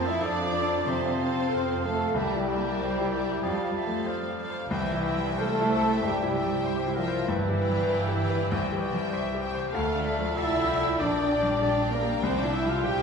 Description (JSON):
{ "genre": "classical, romantic movement for piano and orchestra", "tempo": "95 BPM", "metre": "4/4", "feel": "uneven beats, rubato", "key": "unclear", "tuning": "A4 = 440 Hz", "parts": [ { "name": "clear grand piano", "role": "melody", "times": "0.0-13.0 s", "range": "Bb1 to D5", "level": "-30 LUFS", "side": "left 2 dB", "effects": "none" }, { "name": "warm studio violin section", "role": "melody", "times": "0.0-13.0 s", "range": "E5 to G5", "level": "-42 LUFS", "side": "left 3 dB", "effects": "none" }, { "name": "mellow hollow concert flute", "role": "second line", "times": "0.0-13.0 s", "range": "E5 to G6", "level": "-37 LUFS", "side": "left 1 dB", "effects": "none" }, { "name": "warm clarinet", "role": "second line", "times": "0.0-13.0 s", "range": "Bb4 to G5", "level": "-39 LUFS", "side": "left 1 dB", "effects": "none" }, { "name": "warm oboe", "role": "second line", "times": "0.0-13.0 s", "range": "E5 to Bb5", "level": "-38 LUFS", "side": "right 3 dB", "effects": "none" }, { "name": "warm studio violin section", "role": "second line", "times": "0.0-13.0 s", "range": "F4 to F5", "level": "-37 LUFS", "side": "left 3 dB", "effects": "none" }, { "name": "warm studio viola section", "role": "accompaniment", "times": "0.0-13.0 s", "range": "E4 to G5", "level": "-35 LUFS", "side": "right 2 dB", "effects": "none" }, { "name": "mellow French horn section", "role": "sustained chords", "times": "0.0-13.0 s", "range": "E3 to G4", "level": "-29 LUFS", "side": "left 1 dB", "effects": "none" }, { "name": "dark studio double bass section", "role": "bass", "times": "0.0-13.0 s", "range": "G1 to F2", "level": "-35 LUFS", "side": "right 2 dB", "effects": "none" }, { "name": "warm studio cello section", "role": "bass", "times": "0.0-13.0 s", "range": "E3 to G4", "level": "-35 LUFS", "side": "right 2 dB", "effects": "none" } ], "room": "wet recital hall reverb, RT60 1.6 s", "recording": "heard from further back in the room, lossy compression artefacts", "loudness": "-24 LUFS", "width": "side -5 dB against mid", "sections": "0.0-13.0 A section", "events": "none", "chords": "0.0 F; 2.2 C9; 3.4 F; 4.7 C; 7.3 G7; 8.5 C; 9.7 Dm; 11.0 Gm/Bb; 12.2 C" }